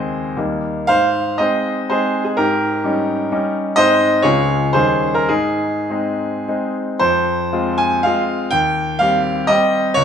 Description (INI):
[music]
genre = classical, romantic triple-time dance for piano with dotted rhythms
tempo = 99-137 BPM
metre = 3/4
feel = rubato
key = Ab major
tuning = A4 = 439 Hz
[part]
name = bright concert grand piano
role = solo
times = 0.0-10.0 s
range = Db2 to Ab5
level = -15 LUFS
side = equal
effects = none
[sound]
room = moderate recital hall reverb, RT60 1.6 s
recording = none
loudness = -15 LUFS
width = side -8 dB against mid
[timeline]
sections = 0.0-7.0 A section; 7.0-10.0 B section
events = none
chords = 0.4 Eb; 0.9 Ab; 2.4 Eb7/Ab; 3.8 Ab; 4.2 Db; 4.7 Eb7; 5.3 Ab; 7.0 Fm; 8.5 Cm/Eb